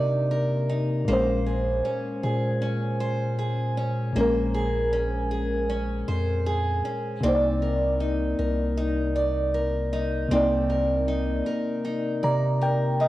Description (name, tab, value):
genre	contemporary R&B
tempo	78 BPM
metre	4/4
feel	swing 54% on 16ths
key	unclear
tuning	A4 = 440 Hz
part	mellow FM electric piano	accompaniment	0.0-13.1 s	Bb2 to Bb5	-27 LUFS	left 1 dB	chorus
part	picked steel-string acoustic guitar	arpeggios	0.0-13.1 s	Bb3 to D5	-28 LUFS	right 1 dB	analog delay
part	long sustained 808-style bass	bass	0.0-13.1 s	Bb1 to C3	-27 LUFS	equal	none
room	light reverb, studio reverb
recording	dry, gritty hardware recording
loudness	-23 LUFS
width	side -16 dB against mid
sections	0.0-13.1 A section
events	FM electric piano fill 11.8-13.1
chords	0.0 Cm9; 1.1 Bbm9; 7.2 Cm9